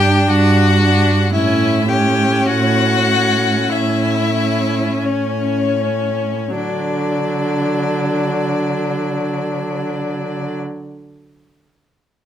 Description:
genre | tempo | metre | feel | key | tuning
classical, slow romantic movement for string quartet | 38-58 BPM | 4/4 | rubato | D major | A4 = 441 Hz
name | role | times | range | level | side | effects
rich violin | melody | 0.0-10.6 s | C#5 to G5 | -21 LUFS | left 6 dB | none
clear violin | second line | 0.0-10.6 s | C#4 to G4 | -22 LUFS | left 3 dB | none
rich viola | accompaniment | 0.0-10.6 s | F#3 to D4 | -21 LUFS | right 1 dB | none
dark cello | bass | 0.0-10.6 s | G2 to D3 | -19 LUFS | right 3 dB | none
room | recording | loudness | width
light reverb | close, detailed microphones | -14 LUFS | side -10 dB against mid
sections
0.0-6.6 A section; 6.6-12.3 B section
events
slowing down 0.0-6.6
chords
0.0 Dadd11/G; 1.3 A; 6.6 D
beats
0.29 | 1.34 2.47 3.69 5.03 | 6.55 8.01 9.43

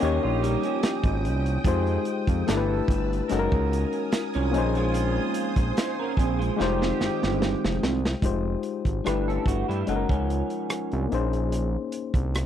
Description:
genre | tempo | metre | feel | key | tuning
R&B, neo-soul | 73 BPM | 4/4 | swing 54% on 16ths | F minor | A4 = 440 Hz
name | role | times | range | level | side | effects
electric guitar through a small old amp | second line | 0.0-11.1 s | Eb3 to C5 | -31 LUFS | right 8 dB | analog chorus
overdriven reed electric piano | accompaniment | 0.0-12.5 s | Ab3 to Gb5 | -28 LUFS | left 8 dB | none
soft string machine | sustained chords | 0.0-8.2 s | Ab3 to E6 | -34 LUFS | right 1 dB | ensemble chorus
mellow horn section | stabs | 0.0-7.8 s | Db3 to Bb4 | -33 LUFS | right 10 dB | none
fat analog bass | bass | 0.0-12.5 s | F1 to G2 | -27 LUFS | right 1 dB | none
crunchy breakbeat drum kit | drums | 0.0-12.5 s | hi-hat, kick drum, rim click, snare drum | -26 LUFS | right 1 dB | none
room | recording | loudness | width
little or no reverb | dry, close 1970s-style studio recording | -23 LUFS | side -10 dB against mid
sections
0.0-8.2 A section; 8.2-12.5 B section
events
drum fill 6.6-8.2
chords
0.0 Eb7; 1.6 Fm9; 2.5 G69; 3.3 Gb69; 4.5 Bbm11; 6.6 Fm9; 9.0 G69; 9.9 Gb69; 11.1 Bbm11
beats
0.00 0.82 | 1.64 2.46 3.29 4.11 | 4.93 5.75 6.58 7.40 | 8.22 9.04 9.86 10.69 | 11.51 12.33

